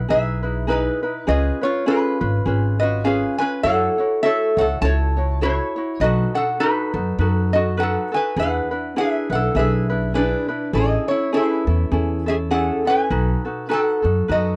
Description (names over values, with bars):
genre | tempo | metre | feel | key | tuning
Hawaiian | 102 BPM | 4/4 | swing 58% on 8ths | E major | A4 = 437 Hz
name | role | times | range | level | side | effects
ukulele | accompaniment | 0.0-14.6 s | C#4 to C#5 | -26 LUFS | equal | none
metal-body resonator slide guitar | melody | 0.1-14.6 s | D4 to A5 | -24 LUFS | equal | none
upright bass | bass | 0.1-14.6 s | G#1 to F#2 | -24 LUFS | equal | none
room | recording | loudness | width
light reverb | dry, close 1970s-style studio recording | -20 LUFS | mono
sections
0.0-14.6 A section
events
none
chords
0.0 Emaj7; 1.3 C#7; 3.6 F#m7; 6.0 B7; 8.4 E7; 10.7 Amaj7; 13.1 B7